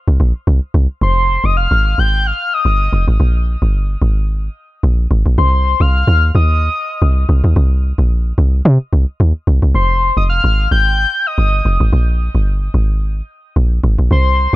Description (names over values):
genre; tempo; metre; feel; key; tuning
amapiano; 110 BPM; 4/4; swing 55% on 16ths; C minor; A4 = 441 Hz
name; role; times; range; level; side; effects
deep log drum bass; bass; 0.1-14.6 s; F1 to C3; -12 LUFS; equal; none
soft octave-layered synth lead; melody; 1.0-14.6 s; C6 to G6; -17 LUFS; left 2 dB; chorus, phaser, tape echo
room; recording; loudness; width
little or no reverb; none; -12 LUFS; side -18 dB against mid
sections
0.0-14.6 A section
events
none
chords
0.0 C7(no3); 1.0 Fmadd9; 3.2 Gm; 5.4 Cmadd11; 7.3 C7(no3); 9.7 Fmadd9; 11.9 Gm